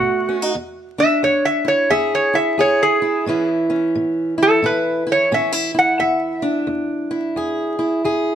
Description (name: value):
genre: blues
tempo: 88 BPM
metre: 4/4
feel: swing 62% on 8ths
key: E mixolydian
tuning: A4 = 440 Hz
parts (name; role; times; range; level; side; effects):
- metal-body resonator slide guitar; melody; 0.0-6.7 s; F#4 to F#5; -16 LUFS; right 1 dB; none
- fingerpicked steel-string acoustic guitar; accompaniment; 0.0-8.3 s; E2 to G#4; -20 LUFS; equal; none
room: light reverb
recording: vinyl crackle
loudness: -16 LUFS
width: side -9 dB against mid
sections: 0.5-8.3 A section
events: none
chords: 0.0 B7; 0.5 E7; 3.3 A; 6.0 E7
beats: | 0.53 1.22 1.90 2.58 | 3.26 3.94 4.63 5.31 | 5.99 6.67 7.36 8.04